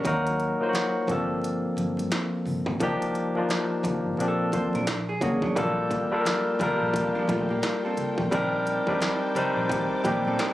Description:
R&B, neo-soul; 87 BPM; 4/4; swing 61% on 16ths; A4 = 441 Hz
vintage hollow-body jazz guitar; second line; 0.0-0.2, 4.5-10.5 s; F3 to C5; -31 LUFS; right 3 dB
barky tine electric piano; accompaniment; 0.0-10.5 s; F3 to C5; -25 LUFS; left 1 dB
industrial drum kit; drums; 0.0-10.5 s; hi-hat, kick drum, snare drum; -32 LUFS; right 1 dB; distortion
congas; percussion; 0.0-10.5 s; -36 LUFS; right 1 dB
vintage muted fingered electric bass; bass; 0.1-10.4 s; G1 to Bb2; -33 LUFS; equal
warm studio string section; sustained chords; 5.6-10.5 s; G4 to D6; -39 LUFS; equal
digital ambience; recorded on a phone in the room, studio ambience; -24 LUFS; side -15 dB against mid
0.0-5.6 A section; 5.6-10.5 B section
0.0 Ebm; 1.1 Gm11; 2.8 Cm11; 4.2 Bbmaj9; 4.9 Bb7alt; 5.6 Gm9/Bb; 8.3 Cm9/Bb
| 0.04 0.73 1.42 2.11 | 2.80 3.49 4.18 4.87 | 5.56 6.25 6.94 7.63 | 8.32 9.01 9.70 10.39

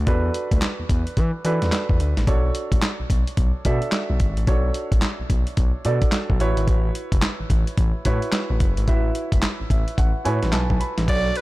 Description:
R&B, new jack swing; 109 BPM; 4/4; swing 62% on 16ths; A4 = 441 Hz
warm grand piano; accompaniment; 0.0-11.4 s; D4 to B5; -27 LUFS; right 2 dB
smooth gliding synth bass; bass; 0.0-11.3 s; F#1 to E3; -23 LUFS; equal
dusty soul sampler-style drum kit; drums; 0.1-11.4 s; crash cymbal, handclaps, hi-hat, kick drum, snare drum; -21 LUFS; equal
breathy alto saxophone; melody; 11.1-11.4 s; B4 to D5; -22 LUFS; right 2 dB
little or no reverb; -19 LUFS; side -18 dB against mid
0.0-11.1 A section
grand piano fill 9.4-11.1
0.0 E9sus4; 2.3 Bm7; 6.4 A69
| 0.07 0.62 1.17 1.72 | 2.27 2.82 3.37 3.92 | 4.47 5.03 5.58 6.13 | 6.68 7.23 7.78 8.33 | 8.88 9.43 9.98 10.53 | 11.08

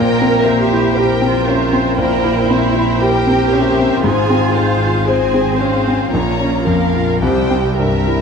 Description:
classical, romantic movement for piano and orchestra; 50-60 BPM; 4/4; rubato; A4 = 440 Hz
clear concert grand piano; melody; 0.0-8.2 s; Bb1 to C5; -15 LUFS; left 1 dB
rich chamber violin section; melody; 0.0-8.2 s; E5 to Bb5; -25 LUFS; left 5 dB
rich symphonic violin section; second line; 0.0-8.2 s; Ab4 to Db5; -22 LUFS; left 4 dB
warm studio viola section; accompaniment; 0.0-8.2 s; F4 to C5; -22 LUFS; right 2 dB
warm chamber cello section; bass; 0.0-8.2 s; G3 to Bb4; -20 LUFS; right 4 dB
warm chamber double bass section; bass; 0.0-8.2 s; Ab1 to C2; -22 LUFS; right 3 dB
moderate scoring stage reverb, RT60 1.6 s; -12 LUFS; side -6 dB against mid
0.0-8.2 A section
0.0 C7/Bb; 4.0 Fm/Ab; 6.1 Bbm; 7.2 C7
0.96 1.99 3.02 | 4.05 5.06 6.12 7.22

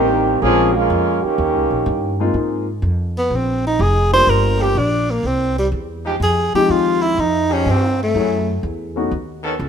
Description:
jazz, big band swing; 124 BPM; 4/4; swing 69% on 8ths; Ab major; A4 = 439 Hz
bright trombone section; second line; 0.0-2.2 s; Eb3 to Ab4; -16 LUFS; right 2 dB
warm grand piano; accompaniment; 0.0-9.1 s; F3 to C5; -21 LUFS; left 4 dB
upright bass; bass; 0.0-9.7 s; F1 to Ab2; -21 LUFS; equal
warm tenor saxophone; melody; 3.2-8.6 s; G3 to C5; -17 LUFS; equal
bright trombone section; sustained chords; 4.6-9.5 s; D#3 to A4; -25 LUFS; right 1 dB
moderate echo chamber reverb, RT60 1.6 s; minimal, uncompressed stereo recording; -15 LUFS; side -7 dB against mid
0.0-2.3 A section; 2.3-9.7 B section
trombone section solo 0.0-2.3; tenor saxophone solo 2.3-9.7
0.4 Bbm7; 1.4 Eb7; 2.3 Ab69; 4.3 Gm7; 5.2 C; 6.2 Fm9; 8.1 Gbm9; 9.1 B9
| 0.42 0.90 1.38 1.86 | 2.34 2.83 3.31 3.79 | 4.27 4.76 5.24 5.72 | 6.21 6.69 7.17 7.66 | 8.14 8.63 9.11 9.59

